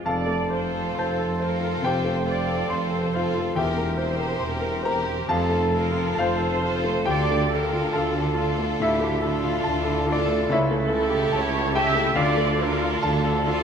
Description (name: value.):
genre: classical.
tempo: 69 BPM.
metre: 4/4.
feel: rubato.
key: F major.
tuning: A4 = 438 Hz.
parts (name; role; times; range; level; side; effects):
clear grand piano; melody; 0.0-13.6 s; C#2 to C6; -24 LUFS; left 2 dB; none.
rich chamber viola section; accompaniment; 0.0-13.6 s; G4 to E5; -29 LUFS; right 5 dB; none.
warm chamber cello section; bass; 0.0-13.6 s; E2 to D3; -31 LUFS; right 2 dB; none.
dark chamber double bass section; bass; 0.1-13.6 s; E1 to D2; -33 LUFS; right 2 dB; none.
mellow tuba; bass; 0.1-13.6 s; E1 to D2; -31 LUFS; right 4 dB; none.
rich chamber violin section; melody; 0.5-13.6 s; A4 to Bb4; -35 LUFS; left 2 dB; none.
rich chamber violin section; second line; 0.5-13.6 s; C4 to G4; -31 LUFS; left 2 dB; none.
room: moderate scoring stage reverb, RT60 2.0 s.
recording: none.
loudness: -21 LUFS.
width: side -7 dB against mid.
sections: 0.1-13.6 A section.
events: none.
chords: 0.1 F; 3.6 C7/E; 5.3 F; 7.1 Dm; 10.5 A7/C#; 12.2 Dm.